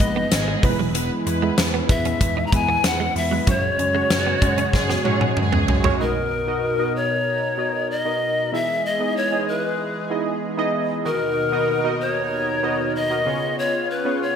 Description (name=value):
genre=1980s-style pop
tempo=95 BPM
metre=4/4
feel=straight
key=B major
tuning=A4 = 440 Hz
part: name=polished pan flute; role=melody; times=0.0-14.4 s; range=A#4 to A#5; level=-23 LUFS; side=left 3 dB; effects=none
part: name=warm analog keys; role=accompaniment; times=0.0-14.4 s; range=G#2 to E5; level=-25 LUFS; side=right 2 dB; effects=chorus
part: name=chorused pulse-width pad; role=sustained chords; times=0.0-14.4 s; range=D#2 to A#4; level=-29 LUFS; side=equal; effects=none
part: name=direct-recorded clean electric guitar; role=riff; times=0.0-6.0 s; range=E3 to D#4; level=-30 LUFS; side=right 7 dB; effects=ensemble chorus, digital delay
part: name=vintage slap bass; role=bass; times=0.0-5.9 s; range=E1 to G#2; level=-26 LUFS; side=equal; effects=none
part: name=huge arena drum kit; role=drums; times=0.0-6.0 s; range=hi-hat, kick drum, snare drum, toms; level=-22 LUFS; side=equal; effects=gated reverb
part: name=warm studio violin section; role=second line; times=0.3-6.0 s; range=F#4 to B4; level=-30 LUFS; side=equal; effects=digital delay
room=moderate plate reverb, RT60 1.3 s, small room ambience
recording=bright 1980s-style digital production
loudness=-19 LUFS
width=side -8 dB against mid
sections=0.0-6.0 A section; 6.0-14.4 B section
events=drum fill 4.7-6.0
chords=0.0 G#m; 0.6 E; 3.5 F#sus2; 6.0 Bmaj7; 8.5 Emaj7; 11.1 Bmaj7/D#; 13.3 C#7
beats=0.32 | 0.95 1.58 2.21 2.84 | 3.47 4.11 4.74 5.37 | 6.00 6.63 7.26 7.89 | 8.53 9.16 9.79 10.42 | 11.05 11.68 12.32 12.95 | 13.58 14.21